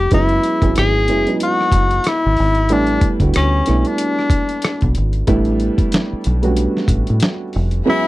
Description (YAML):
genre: R&B, neo-soul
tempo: 93 BPM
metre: 4/4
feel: swing 58% on 16ths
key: unclear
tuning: A4 = 435 Hz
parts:
  - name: warm tenor saxophone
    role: melody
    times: 0.0-8.1 s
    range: C#4 to G#4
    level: -17 LUFS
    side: left 2 dB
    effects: slapback echo
  - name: dark upright piano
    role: accompaniment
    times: 0.0-8.1 s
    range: F#3 to F#4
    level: -20 LUFS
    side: right 2 dB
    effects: none
  - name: deep dub fingered electric bass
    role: bass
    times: 0.0-7.8 s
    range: E#1 to A2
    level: -17 LUFS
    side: equal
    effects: tube saturation
  - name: dusty soul sampler-style drum kit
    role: drums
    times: 0.1-7.8 s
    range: hi-hat, kick drum, rim click, snare drum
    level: -18 LUFS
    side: equal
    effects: overdrive
  - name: dark symphonic string section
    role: sustained chords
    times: 7.9-8.1 s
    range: G#4 to B5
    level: -26 LUFS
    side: left 1 dB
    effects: none
room: little or no reverb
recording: dry, close 1970s-style studio recording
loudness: -14 LUFS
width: side -18 dB against mid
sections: 0.0-5.3 A section; 5.3-7.9 B section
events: none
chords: 0.1 F#9sus4; 2.7 A9sus4